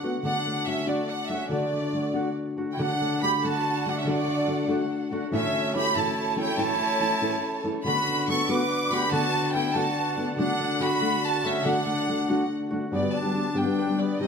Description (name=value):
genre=mexican folk, mariachi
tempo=95 BPM (dotted quarters)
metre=6/8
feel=straight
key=D major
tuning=A4 = 440 Hz
part: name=clear studio violin section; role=melody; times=0.0-14.3 s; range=D5 to D6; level=-27 LUFS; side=right 1 dB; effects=none
part: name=mellow trumpet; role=second line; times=0.0-14.3 s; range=A3 to B4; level=-35 LUFS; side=right 4 dB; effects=none
part: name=nylon-string guitar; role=accompaniment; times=0.0-14.3 s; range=G2 to G4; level=-30 LUFS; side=left 1 dB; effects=none
part: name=concert harp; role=arpeggios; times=0.0-14.3 s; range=D3 to B4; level=-29 LUFS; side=left 2 dB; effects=none
part: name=dark studio violin section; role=sustained chords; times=2.8-12.9 s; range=A3 to F#5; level=-36 LUFS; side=equal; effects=none
room=moderate recital hall reverb, RT60 1.5 s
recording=close, detailed microphones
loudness=-23 LUFS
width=side -6 dB against mid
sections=0.0-2.8 A section; 2.8-12.9 A section; 12.9-14.3 B section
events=none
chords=0.2 D; 5.3 A; 7.9 D6; 12.9 G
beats=| 0.25 0.88 | 1.51 2.15 | 2.79 3.43 | 4.06 4.70 | 5.33 5.96 | 6.59 7.22 | 7.86 8.49 | 9.13 9.76 | 10.39 11.02 | 11.66 12.29 | 12.93 13.57 | 14.21